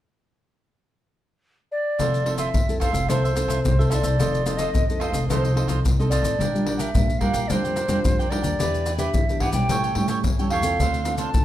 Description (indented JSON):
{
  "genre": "samba and choro",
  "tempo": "109 BPM",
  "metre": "4/4",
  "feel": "straight",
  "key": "F major",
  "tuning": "A4 = 441 Hz",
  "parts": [
    { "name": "wooden flute", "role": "melody", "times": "1.7-11.4 s", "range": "C5 to A5", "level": "-26 LUFS", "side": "right 1 dB", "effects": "none" },
    { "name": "cavaquinho", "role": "accompaniment", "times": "2.0-11.3 s", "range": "D4 to G5", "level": "-31 LUFS", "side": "right 5 dB", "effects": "none" },
    { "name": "nylon-string guitar", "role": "accompaniment", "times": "2.0-11.4 s", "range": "A2 to B4", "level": "-28 LUFS", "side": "left 1 dB", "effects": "none" },
    { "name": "upright bass", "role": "bass", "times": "2.0-11.4 s", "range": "F1 to E3", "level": "-25 LUFS", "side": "equal", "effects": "none" },
    { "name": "maracas, surdo and pandeiro", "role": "percussion", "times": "2.0-11.4 s", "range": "none", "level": "-24 LUFS", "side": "left 1 dB", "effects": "none" }
  ],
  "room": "wet large studio reverb, RT60 0.8 s",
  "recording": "minimal, uncompressed stereo recording",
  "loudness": "-20 LUFS",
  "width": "side -13 dB against mid",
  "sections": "0.0-2.0 A section; 2.0-11.4 B section",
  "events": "none",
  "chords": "0.0 N.C.; 2.0 Fmaj7; 4.2 F7; 6.4 Bb6; 8.6 Em7; 9.7 A7; 10.8 Dm7",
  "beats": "0.34 0.89 1.44 | 1.99 2.54 3.10 3.65 | 4.20 4.75 5.29 5.84 | 6.39 6.94 7.49 8.04 | 8.59 9.14 9.69 10.24 | 10.79 11.34"
}